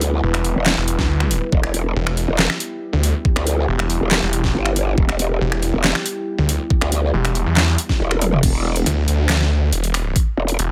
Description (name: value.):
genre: heavy wobble dubstep.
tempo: 139 BPM.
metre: 4/4.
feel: half-time.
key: E minor.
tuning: A4 = 440 Hz.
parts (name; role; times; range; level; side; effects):
evolving wavetable pad; sustained chords; 0.0-8.4 s; G3 to B4; -30 LUFS; equal; chorus, built-in reverb, sidechain pumping.
growl bass; bass; 0.0-10.6 s; E1 to D2; -21 LUFS; equal; chorus, overdrive.
dubstep drum kit; drums; 0.0-10.7 s; crash cymbal, finger snaps, handclaps, hi-hat, snare drum, toms; -23 LUFS; equal; overdrive.
snarling distorted saw bass; bass; 0.2-10.7 s; E1 to E2; -21 LUFS; equal; distortion, overdrive.
electronic kick drum; drums; 1.0-10.2 s; none; -20 LUFS; equal; overdrive.
room: little or no reverb.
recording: none.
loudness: -19 LUFS.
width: mono.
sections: 0.0-8.4 A section; 8.4-10.7 A section.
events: drop 0.0-8.4, 8.4-10.7; drum fill 8.2.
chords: 0.0 Em; 8.4 E5.